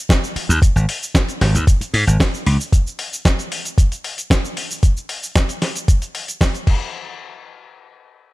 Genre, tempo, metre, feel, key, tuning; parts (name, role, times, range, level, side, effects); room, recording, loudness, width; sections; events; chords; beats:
nu-disco, nu disco; 114 BPM; 4/4; straight; A4 = 442 Hz
dusty soul sampler-style drum kit; drums; 0.1-6.8 s; cabasa, crash cymbal, hi-hat, snare drum; -22 LUFS; equal
electronic kick drum; drums; 0.1-6.8 s; -14 LUFS; equal
glassy slap bass; bass; 0.4-2.6 s; Ab1 to Ab2; -15 LUFS; equal
digital ambience; -16 LUFS; side -20 dB against mid
0.0-6.9 A section; 6.9-8.3 B section
0.09 | 0.62 1.14 1.67 2.20 | 2.72 3.25 3.78 4.30 | 4.83 5.36 5.88 6.41